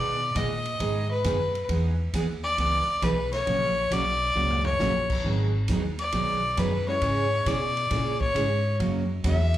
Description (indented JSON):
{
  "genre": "country, western swing",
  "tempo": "135 BPM",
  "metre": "4/4",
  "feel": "swing 68% on 8ths",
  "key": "unclear",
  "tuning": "A4 = 440 Hz",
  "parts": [
    { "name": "clear fiddle", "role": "melody", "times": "0.0-9.6 s", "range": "B4 to E5", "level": "-26 LUFS", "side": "left 2 dB", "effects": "slapback echo" },
    { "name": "picked steel-string acoustic guitar", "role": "accompaniment", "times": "0.0-9.4 s", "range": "B2 to G#4", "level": "-30 LUFS", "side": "right 4 dB", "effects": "plate reverb, slapback echo" },
    { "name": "upright bass", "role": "bass", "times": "0.0-9.6 s", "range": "G#1 to B2", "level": "-28 LUFS", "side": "equal", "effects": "none" },
    { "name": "swinging big-band drum kit", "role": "drums", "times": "0.4-9.6 s", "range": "crash cymbal, hi-hat, kick drum, ride cymbal, snare drum, toms", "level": "-36 LUFS", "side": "equal", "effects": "none" },
    { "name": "tack piano", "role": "accompaniment", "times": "6.9-7.4 s", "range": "G#3 to C#5", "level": "-33 LUFS", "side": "left 4 dB", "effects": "slapback echo" }
  ],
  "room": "light reverb",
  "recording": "live gig heard through the venue's PA, club reverb",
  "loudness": "-23 LUFS",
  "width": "side -13 dB against mid",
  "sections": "0.0-9.6 A section",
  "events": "fiddle solo 0.0-9.6; drum fill 4.4-4.8",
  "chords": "0.0 G#m; 1.7 Emaj7; 3.5 F#; 5.2 G#m7; 7.0 C#m/G#; 8.8 F#",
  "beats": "0.36 0.80 1.25 | 1.69 2.14 2.58 3.03 | 3.47 3.92 4.36 4.80 | 5.25 5.69 6.14 6.58 | 7.02 7.47 7.91 8.36 | 8.80 9.24"
}